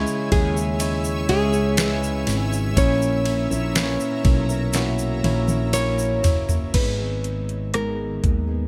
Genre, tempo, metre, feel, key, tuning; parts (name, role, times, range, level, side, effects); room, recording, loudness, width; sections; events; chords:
pop ballad; 61 BPM; 4/4; straight; G# minor; A4 = 439 Hz
bell-like tine electric piano; accompaniment; 0.0-8.7 s; G#2 to C#5; -29 LUFS; equal
shimmering ambient pad; sustained chords; 0.0-6.7 s; C#5 to E6; -35 LUFS; equal; chorus, built-in reverb
fingerpicked steel-string acoustic guitar; arpeggios; 0.0-8.7 s; G#2 to A#4; -35 LUFS; equal
fretless electric bass; bass; 0.0-8.7 s; F#1 to D#2; -27 LUFS; equal; analog chorus
tube shaker; percussion; 0.1-6.7 s; -36 LUFS; equal
nylon-string guitar; melody; 0.3-8.7 s; G#3 to C#5; -29 LUFS; equal
smooth R&B drum kit; drums; 0.3-8.5 s; crash cymbal, hi-hat, kick drum, ride cymbal, rim click, snare drum, toms; -25 LUFS; equal
light reverb; -22 LUFS; mono
0.0-6.7 A section; 6.7-8.7 B section
drum fill 4.7-6.7
0.0 C#m; 2.8 A#dim; 6.7 G#m